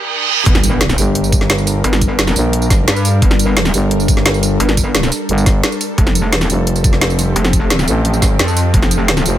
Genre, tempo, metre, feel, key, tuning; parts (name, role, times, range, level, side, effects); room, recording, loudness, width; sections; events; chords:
dark technical drum and bass; 174 BPM; 4/4; straight; G minor; A4 = 445 Hz
swarming drone; sustained chords; 0.0-9.4 s; F3 to Bb4; -20 LUFS; equal; built-in reverb, sidechain pumping
reverse cymbal and impact; sound effects; 0.0-1.8 s; -18 LUFS; right 2 dB
metallic wobble bass; bass; 0.5-9.2 s; F1 to G2; -15 LUFS; equal; chorus, overdrive
drum and bass drum kit; drums; 0.5-9.3 s; hi-hat, snare drum, tambourine; -17 LUFS; equal; overdrive
electronic kick drum; drums; 0.5-8.8 s; -14 LUFS; equal; overdrive
growling FM bass; bass; 1.0-9.4 s; F1 to Bb1; -15 LUFS; equal
little or no reverb; high-pass filter; -11 LUFS; side -12 dB against mid
0.5-9.4 A section
break 0.0-0.5; reverse cymbal 0.0-0.5; drop 0.5-9.4; impact 0.5-1.8
0.5 Gmadd9; 6.0 Fadd9